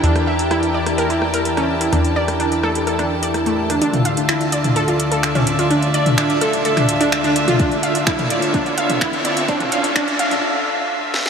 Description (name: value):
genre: melodic techno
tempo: 127 BPM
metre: 4/4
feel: straight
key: D minor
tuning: A4 = 440 Hz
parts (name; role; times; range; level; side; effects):
- lush unison pad; sustained chords; 0.0-11.3 s; D2 to E5; -22 LUFS; left 1 dB; chorus, sidechain pumping
- wide unison pluck; arpeggios; 0.0-10.3 s; A3 to F5; -20 LUFS; equal; sidechain pumping, ping-pong delay
- plucky analog bass; bass; 0.0-3.8 s; E2; -23 LUFS; equal; sidechain pumping
- house drum kit; drums; 0.0-11.3 s; finger snaps, hi-hat, rim click, snare drum, toms; -22 LUFS; equal; none
- clear studio string section; texture; 0.0-10.4 s; E4 to A5; -25 LUFS; right 1 dB; sidechain pumping
- riser; sound effects; 6.4-10.4 s; none; -28 LUFS; right 1 dB; none
- electronic kick drum; drums; 7.6-10.1 s; none; -22 LUFS; equal; none
room: wet huge ambient reverb, RT60 7.5 s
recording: dreamy mix soaked in reverb, high-pass filter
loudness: -15 LUFS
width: side -6 dB against mid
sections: 0.0-3.8 A section; 3.8-11.3 B section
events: build-up 3.8-11.3; filter sweep 3.8-11.3; riser 6.4-10.4; drum fill 11.1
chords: 0.0 Edim; 3.8 Dmadd9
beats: | 0.04 0.51 0.98 1.45 | 1.93 2.40 2.87 3.34 | 3.82 4.29 4.76 5.23 | 5.71 6.18 6.65 7.12 | 7.59 8.07 8.54 9.01 | 9.48 9.96 10.43 10.90